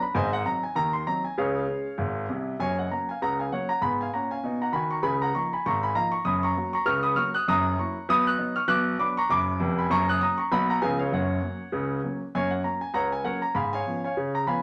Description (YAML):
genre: jazz, stride piano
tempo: 197 BPM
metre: 4/4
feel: swing 59% on 8ths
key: F# major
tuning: A4 = 439 Hz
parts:
  - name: clear grand piano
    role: solo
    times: 0.0-14.6 s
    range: E#1 to F#6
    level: -26 LUFS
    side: equal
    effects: none
room: moderate studio reverb, RT60 0.7 s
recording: nothing above 10.9 kHz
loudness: -26 LUFS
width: mono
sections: 0.0-2.6 A section; 2.6-12.3 A section; 12.3-14.6 A section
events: none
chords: 0.2 G#7; 1.4 C#; 2.6 F#; 3.8 C#7/G#; 6.3 F#; 7.5 F#7; 8.1 B; 8.7 Bm; 9.9 F#; 10.5 Bmaj7; 10.8 C#7; 11.1 F#; 13.5 C#7/G#